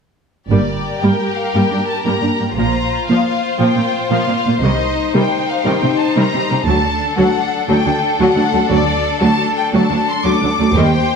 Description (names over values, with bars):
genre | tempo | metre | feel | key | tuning
cinematic | 117 BPM (dotted quarters) | 12/8 | straight | unclear | A4 = 441 Hz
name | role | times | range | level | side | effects
rich symphonic violin section | melody | 0.5-11.2 s | D5 to D6 | -20 LUFS | left 3 dB | none
rich symphonic violin section | second line | 0.5-11.2 s | D4 to C5 | -20 LUFS | left 3 dB | none
warm symphonic viola section | accompaniment | 0.5-10.9 s | Eb3 to D4 | -18 LUFS | equal | none
rich symphonic cello section | bass | 0.5-10.8 s | D2 to C3 | -20 LUFS | right 2 dB | none
rich symphonic double bass section | bass | 0.5-10.9 s | G1 to Eb2 | -19 LUFS | right 4 dB | none
room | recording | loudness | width
wet recital hall reverb, RT60 1.4 s | none | -13 LUFS | side -6 dB against mid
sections
0.5-11.2 A section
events
none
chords
0.5 Gm; 2.6 Bbsus2; 4.6 Cm; 6.7 D